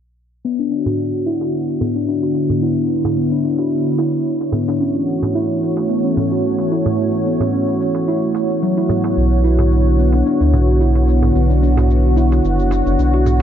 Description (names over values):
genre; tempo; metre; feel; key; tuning
organic downtempo; 110 BPM; 4/4; swing 54% on 16ths; B minor; A4 = 438 Hz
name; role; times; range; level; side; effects
warm analog pad; sustained chords; 0.4-13.4 s; D3 to C#5; -20 LUFS; equal; chorus
steel tongue drum; arpeggios; 0.4-13.3 s; F#3 to F#4; -19 LUFS; left 1 dB; low-pass filter, tape echo
cabasa; drums; 0.5-13.4 s; none; -51 LUFS; left 13 dB; overdrive, small room ambience
darbuka; percussion; 0.9-13.4 s; none; -25 LUFS; right 2 dB; none
warm sub bass; bass; 9.2-13.4 s; F#1 to D2; -14 LUFS; equal; none
room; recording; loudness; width
moderate concert hall reverb, RT60 2.4 s; dark, warm production, low-pass filter, faint mains hum; -14 LUFS; side -9 dB against mid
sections
0.4-13.4 A section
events
filter sweep on steel tongue drum 0.4-13.4; filter sweep on analog synth pad 0.4-13.4; filter sweep 0.4-13.4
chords
0.4 Bmadd9; 4.8 F#m7; 9.2 Bmadd9